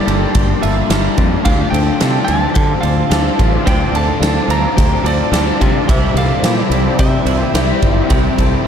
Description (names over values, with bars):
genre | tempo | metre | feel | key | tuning
rock, shoegaze and dream pop | 108 BPM | 4/4 | straight | unclear | A4 = 440 Hz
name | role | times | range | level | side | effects
lightly driven lead guitar | melody | 0.0-8.7 s | D5 to Bb5 | -23 LUFS | right 2 dB | ping-pong delay
soft string machine | sustained chords | 0.0-8.7 s | C5 to D6 | -25 LUFS | equal | ensemble chorus
direct-recorded clean electric guitar | arpeggios | 0.0-8.7 s | F4 to A4 | -28 LUFS | left 7 dB | wide subtle chorus, ping-pong delay
overdriven semi-hollow guitar | riff | 0.0-8.7 s | C3 to G4 | -20 LUFS | left 10 dB | lush chorus
twangy electric guitar | riff | 0.0-8.7 s | C3 to A4 | -22 LUFS | right 9 dB | reverse reverb
modern bright fingered electric bass | bass | 0.1-8.7 s | G1 to D3 | -17 LUFS | equal | none
huge arena drum kit | drums | 0.1-8.5 s | kick drum, ride cymbal, snare drum | -16 LUFS | right 1 dB | none
room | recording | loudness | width
light reverb, small room ambience | none | -12 LUFS | side -8 dB against mid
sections
0.0-8.7 A section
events
none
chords
0.0 Gmadd9; 1.5 Dm7; 5.9 Cadd9